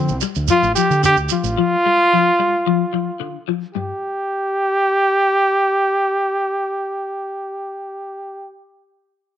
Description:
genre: afrobeat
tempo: 111 BPM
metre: 4/4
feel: swing 54% on 16ths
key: unclear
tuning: A4 = 440 Hz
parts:
  - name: brilliant trombone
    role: melody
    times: 0.0-8.5 s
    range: C4 to G4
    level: -17 LUFS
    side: right 1 dB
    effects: none
  - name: clean electric guitar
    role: arpeggios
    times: 0.0-3.9 s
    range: G2 to G3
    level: -21 LUFS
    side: left 14 dB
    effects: ensemble chorus
  - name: fingered electric bass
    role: bass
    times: 0.0-1.6 s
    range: A1 to D3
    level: -21 LUFS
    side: right 1 dB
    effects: none
  - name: shekere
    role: percussion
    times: 0.1-1.6 s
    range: none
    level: -24 LUFS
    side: right 8 dB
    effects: none
room: light reverb, studio reverb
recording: 1960s-style stereo with parts hard left and right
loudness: -16 LUFS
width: side -10 dB against mid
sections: 0.0-3.7 A section; 3.7-8.1 B section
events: none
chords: 0.0 Dm; 3.7 N.C.

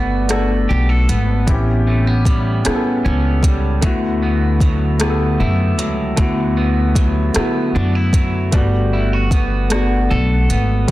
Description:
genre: slow six-eight R&B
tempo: 51 BPM (dotted quarters)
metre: 6/8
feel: straight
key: D major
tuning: A4 = 440 Hz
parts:
  - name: electric guitar at the edge of break-up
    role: second line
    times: 0.0-10.9 s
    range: A2 to A4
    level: -23 LUFS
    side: right 4 dB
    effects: none
  - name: warm baby grand piano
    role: accompaniment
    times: 0.0-10.9 s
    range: G3 to A4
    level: -21 LUFS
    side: left 2 dB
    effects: none
  - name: upright bass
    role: bass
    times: 0.0-10.9 s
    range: G1 to F#2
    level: -17 LUFS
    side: equal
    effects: none
  - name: smooth R&B drum kit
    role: drums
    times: 0.3-10.9 s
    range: hi-hat, kick drum, rim click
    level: -18 LUFS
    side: equal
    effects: none
room: little or no reverb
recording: dense, heavily limited modern master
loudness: -14 LUFS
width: side -16 dB against mid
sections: 0.0-10.9 A section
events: none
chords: 0.0 Gmaj9; 1.5 A9; 3.8 D69; 8.5 Gmaj9

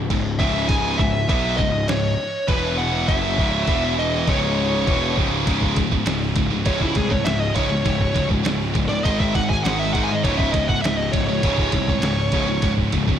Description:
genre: heavy metal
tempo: 101 BPM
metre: 4/4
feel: straight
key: C# minor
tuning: A4 = 440 Hz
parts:
  - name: heavy high-gain guitar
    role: riff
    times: 0.0-13.2 s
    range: C#2 to B3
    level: -26 LUFS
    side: right 10 dB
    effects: distortion, slapback echo
  - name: high-gain distorted guitar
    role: riff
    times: 0.0-13.2 s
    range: C#2 to B3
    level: -26 LUFS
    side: left 8 dB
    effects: distortion
  - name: scooped high-gain guitar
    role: riff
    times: 0.0-13.2 s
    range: C#2 to E4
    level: -29 LUFS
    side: right 1 dB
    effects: distortion
  - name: fuzz picked electric bass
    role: bass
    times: 0.0-13.2 s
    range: C#1 to G#2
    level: -25 LUFS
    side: equal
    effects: overdrive
  - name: lo-fi sampler-style drum kit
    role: drums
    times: 0.1-13.1 s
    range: crash cymbal, kick drum, ride cymbal, snare drum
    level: -24 LUFS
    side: equal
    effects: none
  - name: high-gain lead guitar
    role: melody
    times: 0.4-12.7 s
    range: E4 to G#5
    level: -24 LUFS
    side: equal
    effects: distortion, slapback echo
room: light reverb, digital ambience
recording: none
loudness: -18 LUFS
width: side -9 dB against mid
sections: 0.0-5.5 A section; 5.5-13.2 B section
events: half time 0.0-5.5; kick and snare drop out 4.3-5.5; lead electric guitar solo 5.5-13.2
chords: 0.0 C#m; 2.5 E5; 3.1 C#m; 3.7 E5; 4.3 C#m; 9.1 G#5; 10.2 C#m

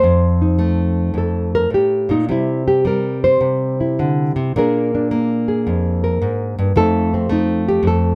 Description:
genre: solo jazz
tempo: 108 BPM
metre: 4/4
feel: swing 68% on 8ths, rubato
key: F mixolydian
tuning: A4 = 440 Hz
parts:
  - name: nylon-string guitar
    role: solo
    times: 0.0-8.2 s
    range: F2 to C5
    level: -17 LUFS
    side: equal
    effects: none
room: light reverb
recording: none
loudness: -17 LUFS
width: mono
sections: 0.0-8.2 A section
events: nylon-string guitar solo 0.0-8.2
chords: 0.0 F7; 2.3 C; 4.6 Bb7; 6.8 F7

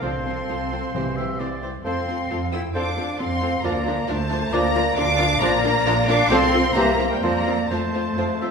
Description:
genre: quick classical-period movement for symphony orchestra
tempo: 133 BPM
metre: 4/4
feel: straight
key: F major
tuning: A4 = 440 Hz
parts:
  - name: rich studio violin section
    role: melody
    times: 0.0-8.5 s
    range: G5 to E6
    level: -26 LUFS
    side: left 1 dB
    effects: none
  - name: clear oboe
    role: second line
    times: 0.0-8.5 s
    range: C5 to E5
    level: -31 LUFS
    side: equal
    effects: none
  - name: hollow concert flute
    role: second line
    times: 0.0-8.5 s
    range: Bb4 to G5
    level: -28 LUFS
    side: left 2 dB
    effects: none
  - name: mellow clarinet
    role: second line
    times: 0.0-8.3 s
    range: F4 to A4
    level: -32 LUFS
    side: left 1 dB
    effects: none
  - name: warm studio violin section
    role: second line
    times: 0.0-8.5 s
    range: E4 to C5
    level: -31 LUFS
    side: left 3 dB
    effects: none
  - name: warm bassoon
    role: accompaniment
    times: 0.0-8.3 s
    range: E3 to F3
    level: -30 LUFS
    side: right 2 dB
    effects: none
  - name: warm studio viola section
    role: accompaniment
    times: 0.0-8.5 s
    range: E3 to D4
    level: -30 LUFS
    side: right 1 dB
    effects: none
  - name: mellow French horn section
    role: sustained chords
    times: 0.0-8.5 s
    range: G3 to E4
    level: -27 LUFS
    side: left 1 dB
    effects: none
  - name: warm studio cello section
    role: bass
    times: 0.0-8.5 s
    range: G3 to E4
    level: -28 LUFS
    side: right 2 dB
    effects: none
  - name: warm studio double bass section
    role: bass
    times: 0.0-8.5 s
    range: Bb1 to F2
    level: -28 LUFS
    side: right 2 dB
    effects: none
  - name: timpani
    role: percussion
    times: 0.0-1.6 s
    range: C3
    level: -33 LUFS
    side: right 2 dB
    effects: none
room: wet recital hall reverb, RT60 1.3 s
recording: recorded in a church or concert hall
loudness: -19 LUFS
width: side -5 dB against mid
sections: 0.0-8.5 A section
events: none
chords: 0.0 F/C; 0.9 C; 1.9 F; 3.6 Bb/D; 5.4 Bb; 6.3 F/C; 6.8 C7; 7.2 F

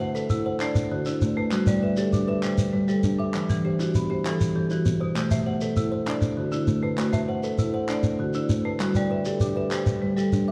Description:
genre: southern african traditional, mbira-style interlocking cycle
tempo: 132 BPM (dotted quarters)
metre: 12/8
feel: straight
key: A dorian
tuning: A4 = 440 Hz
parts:
  - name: kalimba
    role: arpeggios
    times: 0.0-10.5 s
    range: D3 to E5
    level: -28 LUFS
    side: equal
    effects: none
  - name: marimba with hard mallets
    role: arpeggios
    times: 0.0-10.5 s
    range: B2 to F#5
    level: -30 LUFS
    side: equal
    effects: none
  - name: shekere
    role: percussion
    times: 0.2-10.5 s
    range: none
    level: -30 LUFS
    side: equal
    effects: none
  - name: group handclap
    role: percussion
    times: 0.6-9.9 s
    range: none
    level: -39 LUFS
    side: equal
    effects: none
room: wet recital hall reverb, RT60 1.6 s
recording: dark, warm production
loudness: -25 LUFS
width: mono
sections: 0.0-10.5 A section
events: none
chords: 0.0 Am; 0.6 D; 1.5 G; 3.3 Em; 5.2 Am; 6.1 D; 7.0 Am; 7.9 D; 8.8 G

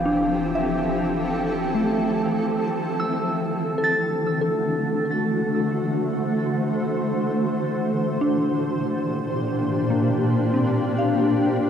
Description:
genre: ambient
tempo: free time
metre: none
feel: none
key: unclear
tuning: A4 = 438 Hz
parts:
  - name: shimmering ambient pad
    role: sustained chords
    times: 0.0-11.7 s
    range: Bb2 to C5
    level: -22 LUFS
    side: equal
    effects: chorus, built-in reverb
  - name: soft synth bell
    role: arpeggios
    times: 0.0-11.7 s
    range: A3 to A6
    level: -26 LUFS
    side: equal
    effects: chorus, tape echo
  - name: round analog bass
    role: bass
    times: 0.0-2.6 s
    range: F1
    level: -40 LUFS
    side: equal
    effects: none
  - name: wind-like tuned noise texture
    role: texture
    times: 0.0-2.6 s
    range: G4 to G5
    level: -37 LUFS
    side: left 1 dB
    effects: none
room: wet cathedral reverb, RT60 6.3 s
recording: in a vast, echoing space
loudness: -20 LUFS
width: side -8 dB against mid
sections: 0.0-2.6 A section; 2.6-11.7 B section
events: none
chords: 0.0 Fmaj7; 2.6 D7; 7.7 Bb69

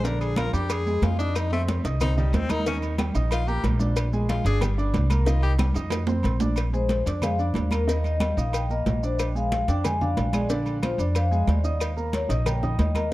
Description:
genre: Afro-Cuban jazz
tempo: 184 BPM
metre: 4/4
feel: straight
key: Bb mixolydian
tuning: A4 = 440 Hz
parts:
  - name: bright tenor saxophone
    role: second line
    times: 0.0-5.5 s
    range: G3 to Bb4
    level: -31 LUFS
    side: left 4 dB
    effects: none
  - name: warm concert grand piano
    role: accompaniment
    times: 0.0-13.1 s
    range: D3 to Eb6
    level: -30 LUFS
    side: right 2 dB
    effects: none
  - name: upright bass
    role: bass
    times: 0.0-13.1 s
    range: G1 to F2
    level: -24 LUFS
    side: equal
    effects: none
  - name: congas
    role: percussion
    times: 0.0-13.1 s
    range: none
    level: -32 LUFS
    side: equal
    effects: dub echo
  - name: cowbell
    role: percussion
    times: 0.0-13.1 s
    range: none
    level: -36 LUFS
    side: left 5 dB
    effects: dub echo
  - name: maracas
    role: percussion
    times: 0.0-13.1 s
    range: none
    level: -43 LUFS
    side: right 5 dB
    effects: dub echo
  - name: agogo bells and timbales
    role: percussion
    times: 0.2-13.1 s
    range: none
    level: -34 LUFS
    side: right 5 dB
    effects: dub echo
  - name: claves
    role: percussion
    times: 0.4-13.1 s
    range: none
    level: -43 LUFS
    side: left 6 dB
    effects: none
  - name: vibraphone with medium mallets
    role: melody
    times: 6.7-13.1 s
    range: Bb4 to Ab5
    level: -29 LUFS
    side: left 3 dB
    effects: dub echo
room: light reverb, small room reverb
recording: echo-heavy mix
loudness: -22 LUFS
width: side -17 dB against mid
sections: 0.0-6.6 A section; 6.6-13.1 A section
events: tenor saxophone solo 0.0-6.6; drum fill 5.6-6.6; vibraphone solo 6.6-13.1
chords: 0.0 Bb7; 1.4 F5; 2.7 Eb; 4.0 Bb7; 4.6 G5; 5.3 Cm; 5.9 F5; 6.6 Bb7; 7.9 Eb; 9.2 Bb7; 11.8 Eb

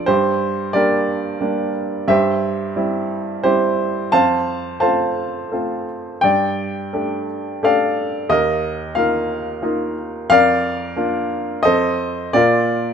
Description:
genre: classical, lyrical solo piano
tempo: 89 BPM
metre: 3/4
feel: rubato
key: unclear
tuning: A4 = 440 Hz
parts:
  - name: warm upright piano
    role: solo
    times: 0.0-12.9 s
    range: Eb2 to A5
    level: -16 LUFS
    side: equal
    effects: none
room: light reverb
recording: close, detailed microphones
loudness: -16 LUFS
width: side -7 dB against mid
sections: 0.0-12.9 A section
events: none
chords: 0.1 Gm; 2.1 C/G; 4.1 F; 6.2 Gsus2; 8.3 Ebsus2; 10.3 Bb/F; 11.7 F7; 12.3 Bb

